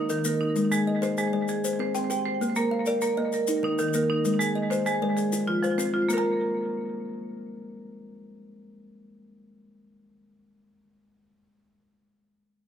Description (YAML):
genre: southern african traditional, mbira-style interlocking cycle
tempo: 131 BPM (dotted quarters)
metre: 12/8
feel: straight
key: Bb mixolydian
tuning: A4 = 439 Hz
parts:
  - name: kalimba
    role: arpeggios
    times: 0.0-10.4 s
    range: Eb3 to Bb5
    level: -28 LUFS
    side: left 2 dB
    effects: none
  - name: marimba with hard mallets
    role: arpeggios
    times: 0.0-10.4 s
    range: Eb3 to Bb5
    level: -27 LUFS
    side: right 3 dB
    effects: tape echo
  - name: maracas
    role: percussion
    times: 0.1-6.2 s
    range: none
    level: -36 LUFS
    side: left 5 dB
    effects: none
room: wet studio ambience, RT60 0.5 s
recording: heard from further back in the room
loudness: -24 LUFS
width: side -9 dB against mid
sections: 0.0-6.1 A section; 6.1-9.8 B section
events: none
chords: 0.0 Eb5; 0.6 Ab; 1.5 C5; 2.4 Bb; 3.3 Eb5; 4.2 Ab; 5.2 Fm; 6.1 Bb5